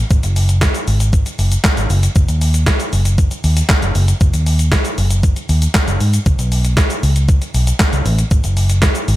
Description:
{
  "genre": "dance-pop",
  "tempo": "117 BPM",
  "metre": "4/4",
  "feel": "straight",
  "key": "unclear",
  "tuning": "A4 = 438 Hz",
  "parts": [
    { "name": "vintage muted fingered electric bass", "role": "bass", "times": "0.0-9.2 s", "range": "F#1 to G#2", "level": "-14 LUFS", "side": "equal", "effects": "sidechain pumping" },
    { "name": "clean 12-bit digital drum machine", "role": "drums", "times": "0.1-9.2 s", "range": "handclaps, hi-hat, kick drum, shaker, snare drum", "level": "-16 LUFS", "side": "equal", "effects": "none" }
  ],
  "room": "little or no reverb",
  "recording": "none",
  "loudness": "-12 LUFS",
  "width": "side -16 dB against mid",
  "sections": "0.0-9.2 A section",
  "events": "none",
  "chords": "none",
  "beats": "| 0.11 0.62 1.13 1.65 | 2.16 2.67 3.18 3.70 | 4.21 4.72 5.23 5.75 | 6.26 6.77 7.29 7.80 | 8.31 8.82"
}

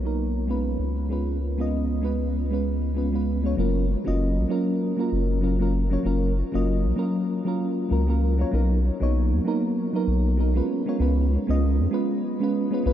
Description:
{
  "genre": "sunset chillout",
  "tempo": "97 BPM",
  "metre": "4/4",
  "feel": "swing 58% on 16ths",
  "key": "F# major",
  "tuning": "A4 = 439 Hz",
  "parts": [
    { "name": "mellow FM electric piano", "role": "accompaniment", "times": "0.0-12.9 s", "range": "F#3 to D#5", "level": "-24 LUFS", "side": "right 1 dB", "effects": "chorus, phaser, auto-pan, diffuse ambient delay" },
    { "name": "round analog bass", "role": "bass", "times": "0.0-12.9 s", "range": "F#1 to E#2", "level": "-23 LUFS", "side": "equal", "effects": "none" }
  ],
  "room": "wet huge ambient reverb, RT60 8.0 s",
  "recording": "dreamy mix soaked in reverb",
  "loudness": "-22 LUFS",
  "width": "side -11 dB against mid",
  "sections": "0.0-3.6 A section; 3.6-12.9 B section",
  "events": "none",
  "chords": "0.0 Bmaj7; 0.8 C#7; 3.6 F#maj7; 8.5 Bmaj7; 10.7 C#7",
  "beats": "0.48 | 1.10 1.72 2.33 2.95 | 3.57 4.19 4.81 5.43 | 6.04 6.66 7.28 7.90 | 8.52 9.14 9.76 10.38 | 10.99 11.61 12.23 12.85"
}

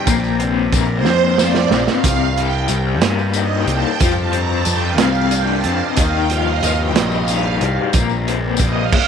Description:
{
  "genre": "psychedelic rock",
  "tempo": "61 BPM (dotted quarters)",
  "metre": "6/8",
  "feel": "straight",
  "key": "unclear",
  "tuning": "A4 = 440 Hz",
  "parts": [
    { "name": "string machine, violins", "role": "sustained chords", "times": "0.0-9.1 s", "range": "Bb4 to Bb5", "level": "-21 LUFS", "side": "right 10 dB", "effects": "ensemble chorus" },
    { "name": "raw garage guitar", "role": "riff", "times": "0.0-8.9 s", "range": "C3 to F4", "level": "-20 LUFS", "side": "left 15 dB", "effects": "overdrive, tremolo" },
    { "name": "tanpura", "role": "drone", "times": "0.0-9.1 s", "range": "C2 to C3", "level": "-27 LUFS", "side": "equal", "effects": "none" },
    { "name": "fuzz picked electric bass", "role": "bass", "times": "0.1-8.9 s", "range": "Bb1 to G2", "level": "-20 LUFS", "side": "equal", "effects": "overdrive" },
    { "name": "crunchy breakbeat drum kit", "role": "drums", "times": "0.1-9.1 s", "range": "crash cymbal, hi-hat, kick drum, snare drum", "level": "-19 LUFS", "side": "right 3 dB", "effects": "none" },
    { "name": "tambourine", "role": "percussion", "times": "0.1-8.7 s", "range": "none", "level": "-28 LUFS", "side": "left 13 dB", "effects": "none" }
  ],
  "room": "light reverb, small room ambience",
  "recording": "1960s-style stereo with parts hard left and right",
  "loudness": "-14 LUFS",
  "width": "side -7 dB against mid",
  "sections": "0.0-9.1 A section",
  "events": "string machine solo 0.0-9.1; drum fill 1.1-2.1",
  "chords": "0.1 Bbsus2; 2.1 Cm7; 4.0 F5; 6.0 Ebadd9; 8.0 Bbsus2",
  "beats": "| 0.08 1.06 | 2.05 3.04 | 4.02 5.00 | 5.99 6.97 | 7.95 8.93"
}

